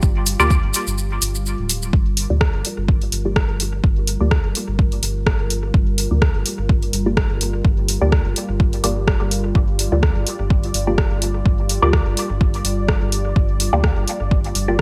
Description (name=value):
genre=dub techno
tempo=126 BPM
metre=4/4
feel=swing 55% on 16ths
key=G minor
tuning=A4 = 440 Hz
part: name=dark analog pad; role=sustained chords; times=0.0-14.8 s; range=G3 to D5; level=-31 LUFS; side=equal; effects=chorus, sidechain pumping
part: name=filtered dub chord stab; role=stabs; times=0.0-14.8 s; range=Bb3 to D5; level=-25 LUFS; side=equal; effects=phaser, sidechain pumping, dub echo
part: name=round analog bass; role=bass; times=0.0-14.8 s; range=D1 to D2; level=-24 LUFS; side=equal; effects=sidechain pumping
part: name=electronic kick drum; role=drums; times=0.0-14.8 s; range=none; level=-20 LUFS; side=equal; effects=overdrive
part: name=maracas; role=percussion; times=0.0-1.9 s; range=none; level=-27 LUFS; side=equal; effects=none
part: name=punchy analog drum machine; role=drums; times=0.3-14.8 s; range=hi-hat, rim click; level=-26 LUFS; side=equal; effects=overdrive, gated reverb, dub echo
room=digital ambience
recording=bright 1980s-style digital production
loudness=-19 LUFS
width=mono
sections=0.0-1.9 A section; 1.9-14.8 A section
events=break 1.0-1.9; filter sweep on synth stab 1.9-14.8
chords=0.0 Gm7